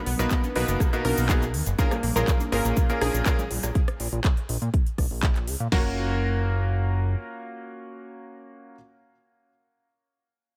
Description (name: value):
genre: progressive house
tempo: 122 BPM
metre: 4/4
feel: straight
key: F# major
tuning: A4 = 439 Hz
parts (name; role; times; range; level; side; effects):
- analog pluck; arpeggios; 0.1-8.7 s; A#3 to B4; -34 LUFS; equal; chorus, cassette tape, sidechain pumping, tape echo
- fat analog bass; bass; 0.1-7.2 s; F#1 to A#2; -29 LUFS; equal; sidechain pumping
- big-room dance drum kit; drums; 0.1-5.7 s; handclaps, hi-hat, rim click; -35 LUFS; equal; none
- bright concert grand piano; stabs; 0.2-8.7 s; A#2 to A#4; -32 LUFS; equal; sidechain pumping, tape echo
- cabasa; percussion; 0.2-3.7 s; none; -39 LUFS; equal; none
- electronic congas and rim click; percussion; 0.2-3.7 s; none; -37 LUFS; equal; overdrive, sidechain pumping on perc, sidechain pumping on snare
- house drum kit; drums; 0.3-5.8 s; crash cymbal, kick drum, snare drum; -26 LUFS; equal; none
room: digital ambience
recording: none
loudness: -25 LUFS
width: mono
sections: 0.0-5.7 A section; 5.7-9.7 B section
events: drop 0.0-5.7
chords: 0.0 Bmaj7; 1.8 A#m7; 5.7 F#maj7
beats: 0.31 0.80 1.29 | 1.79 2.28 2.77 3.26 | 3.75 4.25 4.74 5.23 | 5.72 6.21 6.70 7.20 | 7.69 8.18 8.67